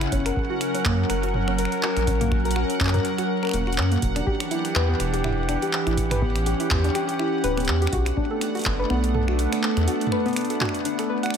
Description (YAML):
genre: IDM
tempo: 123 BPM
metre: 4/4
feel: swing 56% on 16ths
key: unclear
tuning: A4 = 440 Hz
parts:
  - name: warbly tape-like pad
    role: sustained chords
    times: 0.0-11.4 s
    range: E3 to A#4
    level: -26 LUFS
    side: equal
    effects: chorus, built-in reverb
  - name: rubbery square bass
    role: bass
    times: 0.0-9.9 s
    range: D1 to F#2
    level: -24 LUFS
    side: equal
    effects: none
  - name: electro analog drum machine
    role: drums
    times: 0.0-11.4 s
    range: finger snaps, handclaps, hi-hat, toms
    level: -29 LUFS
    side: right 1 dB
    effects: ping-pong delay
  - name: bubbling stepped-filter texture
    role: texture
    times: 0.0-11.4 s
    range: F#5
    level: -34 LUFS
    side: right 6 dB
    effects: chorus, built-in reverb
  - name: soft round pluck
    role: arpeggios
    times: 0.1-11.3 s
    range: A#3 to F#5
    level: -28 LUFS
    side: left 2 dB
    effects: chorus, cassette tape, analog delay
  - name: electronic kick drum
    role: drums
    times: 0.1-8.8 s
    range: none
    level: -27 LUFS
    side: equal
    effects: none
room: moderate plate reverb, RT60 1.3 s, digital ambience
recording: dreamy mix soaked in reverb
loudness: -21 LUFS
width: side -7 dB against mid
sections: 0.0-11.4 A section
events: none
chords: 0.1 F#; 4.0 Em7; 7.9 Bm7